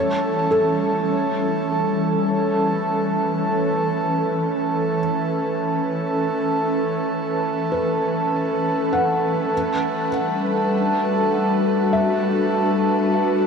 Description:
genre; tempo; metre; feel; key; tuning
ambient; free time; none; none; A mixolydian; A4 = 440 Hz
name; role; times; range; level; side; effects
ethereal airy pad; sustained chords; 0.0-13.5 s; E3 to B4; -21 LUFS; equal; ensemble chorus, built-in reverb
felt-muted upright piano; arpeggios; 0.0-13.5 s; A4 to F#5; -27 LUFS; equal; diffuse ambient delay
hand-pumped harmonium; drone; 0.0-13.5 s; A3 to A4; -23 LUFS; right 1 dB; none
room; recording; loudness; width
wet huge ambient reverb, RT60 8.3 s; none; -19 LUFS; side -6 dB against mid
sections
0.0-13.5 A section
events
none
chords
0.0 Aadd9; 9.5 Gmaj7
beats
free time

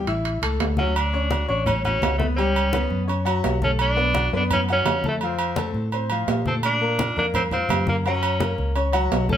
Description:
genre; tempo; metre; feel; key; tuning
latin, salsa; 169 BPM; 4/4; straight; unclear; A4 = 438 Hz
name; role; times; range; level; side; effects
bright baby grand piano; accompaniment; 0.0-9.4 s; F3 to F#6; -26 LUFS; left 3 dB; none
fingered electric bass; bass; 0.1-9.4 s; A1 to Bb2; -25 LUFS; equal; none
congas; percussion; 0.1-9.4 s; none; -29 LUFS; left 2 dB; none
timbales and agogo bells; percussion; 0.1-9.3 s; none; -27 LUFS; right 6 dB; none
clear tenor saxophone; melody; 0.8-9.4 s; A3 to D4; -24 LUFS; equal; none
room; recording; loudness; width
moderate large studio reverb, RT60 0.8 s; band playing live in one room; -20 LUFS; side -10 dB against mid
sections
1.0-9.4 A section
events
none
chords
0.2 A; 1.0 Dmaj7; 2.4 Gmaj7#11/C#; 3.1 F#5; 3.8 Bm7; 5.2 F; 6.6 Bbmaj7; 8.1 F#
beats
0.24 0.60 | 0.95 1.31 1.67 2.02 | 2.38 2.73 3.08 3.44 | 3.79 4.15 4.50 4.86 | 5.21 5.57 5.92 6.28 | 6.63 6.99 7.34 7.70 | 8.06 8.41 8.77 9.12

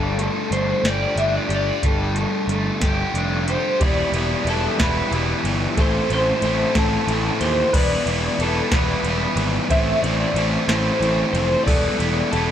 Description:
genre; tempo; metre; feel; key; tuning
indie rock; 61 BPM (dotted quarters); 6/8; straight; unclear; A4 = 438 Hz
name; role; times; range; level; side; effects
electric guitar through a small old amp; melody; 0.0-12.5 s; A4 to E5; -24 LUFS; left 1 dB; ensemble chorus, analog delay
distorted electric guitar; riff; 0.0-12.5 s; A2 to G4; -23 LUFS; equal; distortion
fuzz picked electric bass; bass; 0.0-12.5 s; E1 to D#2; -24 LUFS; equal; overdrive
soft vintage rhythm box; drums; 0.2-12.5 s; crash cymbal, hi-hat, kick drum, ride cymbal, snare drum; -25 LUFS; equal; none
tine electric piano; second line; 3.8-12.5 s; G4 to C5; -33 LUFS; right 3 dB; none
tonewheel organ; sustained chords; 3.8-12.5 s; C5 to E6; -34 LUFS; equal; none
room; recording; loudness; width
little or no reverb; none; -18 LUFS; side -10 dB against mid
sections
0.0-3.8 A section; 3.8-12.5 B section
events
none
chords
0.0 Gsus2; 3.8 Em7; 5.8 Am7; 7.7 Em7; 9.7 Am7; 11.7 Em7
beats
0.85 | 1.84 2.82 | 3.81 4.79 | 5.78 6.76 | 7.74 8.73 | 9.71 10.69 | 11.67

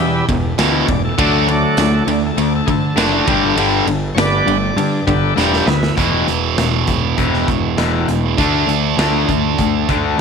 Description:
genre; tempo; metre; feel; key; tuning
classic rock; 100 BPM; 4/4; straight; unclear; A4 = 439 Hz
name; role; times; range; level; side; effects
bright tonewheel organ; sustained chords; 0.0-6.0 s; F#3 to D5; -20 LUFS; right 1 dB; slow rotary speaker, overdrive
crunchy overdriven guitar; riff; 0.0-10.2 s; E2 to D4; -19 LUFS; left 11 dB; none
distorted electric guitar; riff; 0.0-10.2 s; E2 to D4; -19 LUFS; right 13 dB; overdrive
fuzz picked electric bass; bass; 0.0-10.2 s; E1 to D3; -20 LUFS; equal; overdrive
big rock drum kit; drums; 0.3-10.0 s; hi-hat, kick drum, ride cymbal, snare drum; -22 LUFS; right 1 dB; none
tambourine; percussion; 0.6-5.5 s; none; -33 LUFS; left 13 dB; none
room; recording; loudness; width
light reverb, small room ambience; 1960s-style stereo with parts hard left and right; -13 LUFS; side -6 dB against mid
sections
0.0-6.0 A section; 6.0-10.2 B section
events
tonewheel organ solo 0.0-6.0; drum fill 5.4-6.0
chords
0.0 Em; 1.2 D; 3.3 G; 6.0 E5; 8.4 D5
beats
0.58 | 1.18 1.78 2.37 2.97 | 3.57 4.17 4.77 5.37 | 5.97 6.58 7.18 7.78 | 8.38 8.99 9.59 10.19

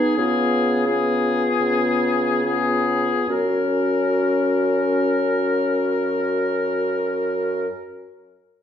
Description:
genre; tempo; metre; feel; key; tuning
classical, slow romantic movement for wind quintet; 34-45 BPM; 4/4; rubato; F# major; A4 = 440 Hz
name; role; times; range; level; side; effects
warm oboe; second line; 0.0-7.7 s; G#4 to A#4; -24 LUFS; left 4 dB; none
clear French horn; accompaniment; 0.0-7.7 s; B3 to C#4; -24 LUFS; left 4 dB; none
warm clarinet; accompaniment; 0.0-7.7 s; D#4 to F#4; -25 LUFS; right 2 dB; none
mellow bassoon; bass; 0.2-7.7 s; F#2 to C#3; -25 LUFS; right 2 dB; none
room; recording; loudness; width
wet recital hall reverb, RT60 1.4 s; heard from further back in the room; -18 LUFS; side -9 dB against mid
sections
0.0-3.3 A section; 3.3-8.6 B section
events
slowing down 0.0-3.3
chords
0.2 C#7; 3.3 F#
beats
0.17 1.62 | 3.29 4.87 6.42

